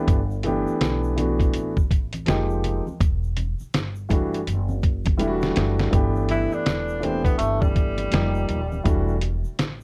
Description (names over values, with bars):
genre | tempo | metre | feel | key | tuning
hip hop, jazz-hop | 82 BPM | 4/4 | swing 62% on 16ths | unclear | A4 = 441 Hz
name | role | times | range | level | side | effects
dark concert grand piano | accompaniment | 0.0-9.1 s | E3 to G4 | -28 LUFS | equal | plate reverb
upright bass | bass | 0.0-9.8 s | Eb1 to B1 | -29 LUFS | equal | none
dusty soul sampler-style drum kit | drums | 0.1-9.8 s | hi-hat, kick drum, snare drum | -25 LUFS | equal | none
egg shaker and congas | percussion | 0.1-9.8 s | none | -40 LUFS | equal | none
mellow tenor saxophone | melody | 6.3-9.4 s | G3 to E4 | -30 LUFS | equal | plate reverb
room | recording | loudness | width
light reverb | dark, warm production | -23 LUFS | mono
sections
0.0-5.9 A section; 5.9-9.8 B section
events
drum fill 5.2-5.9; tenor saxophone solo 5.9-9.8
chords
0.1 G69; 2.3 Fm11; 3.0 Em11; 5.9 G69; 8.1 F9sus4; 8.9 Em11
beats
| 0.08 0.81 1.55 2.28 | 3.01 3.74 4.47 5.21 | 5.94 6.67 7.40 8.13 | 8.86 9.60